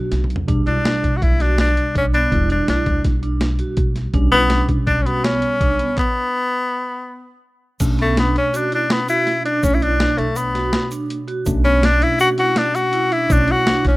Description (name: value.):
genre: progressive instrumental, band music in an uneven meter.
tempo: 164 BPM.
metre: 5/4.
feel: straight.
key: B minor.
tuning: A4 = 444 Hz.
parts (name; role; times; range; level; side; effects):
tine electric piano; accompaniment; 0.0-14.0 s; B2 to C#5; -25 LUFS; equal; overdrive, fast stereo tremolo.
vibraphone with medium hard mallets; arpeggios; 0.0-13.9 s; B3 to F#4; -25 LUFS; right 4 dB; analog delay.
upright bass; bass; 0.1-14.0 s; E1 to B2; -21 LUFS; equal; none.
boom bap sampler-style drum kit; drums; 0.1-13.9 s; crash cymbal, handclaps, hi-hat, kick drum, snare drum, toms; -21 LUFS; equal; none.
bright tenor saxophone; melody; 0.7-14.0 s; A3 to F#4; -18 LUFS; left 1 dB; none.
egg shaker; percussion; 7.8-13.5 s; none; -35 LUFS; right 4 dB; none.
room: little or no reverb.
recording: rough home demo mix.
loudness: -15 LUFS.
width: side -19 dB against mid.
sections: 0.0-7.8 A section; 7.8-14.0 B section.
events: drum fill 0.1-0.5; stop 6.0-7.8.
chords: 0.5 G; 6.0 N.C.; 7.8 Bm9.